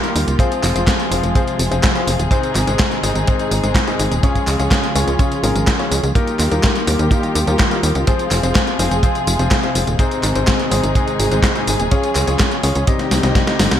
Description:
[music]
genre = italo disco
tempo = 125 BPM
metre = 4/4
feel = straight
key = F minor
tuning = A4 = 440 Hz
[part]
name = dark studio string section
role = sustained chords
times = 0.0-13.8 s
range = C3 to Ab4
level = -22 LUFS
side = right 1 dB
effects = none
[part]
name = bright concert grand piano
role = stabs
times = 0.0-13.8 s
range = Ab2 to Eb5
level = -21 LUFS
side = left 4 dB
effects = ping-pong delay
[part]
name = gated 80s digital drum machine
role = drums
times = 0.0-13.8 s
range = handclaps, hi-hat, snare drum, tambourine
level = -20 LUFS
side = equal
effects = gated reverb, gated reverb snare
[part]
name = tight sequencer bass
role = bass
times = 0.2-13.8 s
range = Eb1 to Eb2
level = -20 LUFS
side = right 1 dB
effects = none
[part]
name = kick drum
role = drums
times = 0.4-13.4 s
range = none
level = -17 LUFS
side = right 1 dB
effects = none
[sound]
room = light reverb, small room ambience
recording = bright 1980s-style digital production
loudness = -14 LUFS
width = side -10 dB against mid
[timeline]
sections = 0.0-13.8 A section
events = drum fill 13.1-13.8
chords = 0.4 Fm; 2.3 Ab; 4.2 Db; 6.2 Ebadd9; 8.1 Fm; 10.0 Ab; 11.9 Db; 12.9 Cm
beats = | 0.39 0.87 1.35 1.83 | 2.31 2.79 3.27 3.75 | 4.23 4.71 5.19 5.67 | 6.15 6.63 7.11 7.59 | 8.07 8.55 9.03 9.51 | 9.99 10.47 10.95 11.43 | 11.91 12.39 12.87 13.35

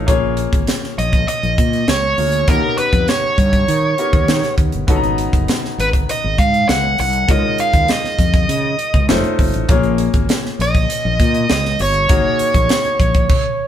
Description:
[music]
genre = polished 1980s jazz-funk pop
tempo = 100 BPM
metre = 4/4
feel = straight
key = unclear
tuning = A4 = 439 Hz
[part]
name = bright grand piano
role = accompaniment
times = 0.0-13.3 s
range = Ab3 to Bb5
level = -22 LUFS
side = left 3 dB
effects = none
[part]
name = fretless electric bass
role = bass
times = 0.0-13.3 s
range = F1 to Eb3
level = -20 LUFS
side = left 1 dB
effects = none
[part]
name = crisp fusion drum kit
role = drums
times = 0.1-13.4 s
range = crash cymbal, hi-hat, kick drum, snare drum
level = -17 LUFS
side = equal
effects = none
[part]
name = nasal lead guitar with a parked wah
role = melody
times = 1.0-13.7 s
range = Bb4 to Gb5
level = -18 LUFS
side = right 2 dB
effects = overdrive
[sound]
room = moderate stone room reverb, RT60 1.3 s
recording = band playing live in one room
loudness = -13 LUFS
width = side -10 dB against mid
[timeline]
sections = 0.0-13.7 A section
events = none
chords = 0.1 Bbm7; 2.5 Eb7b13; 4.9 Abm11; 7.3 Db69; 9.1 F7b13; 9.7 Bbm7; 12.1 Ab9sus4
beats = | 0.08 0.68 1.28 1.88 | 2.48 3.08 3.68 4.28 | 4.88 5.49 6.08 6.69 | 7.29 7.89 8.49 9.09 | 9.69 10.29 10.89 11.49 | 12.10 12.70 13.30

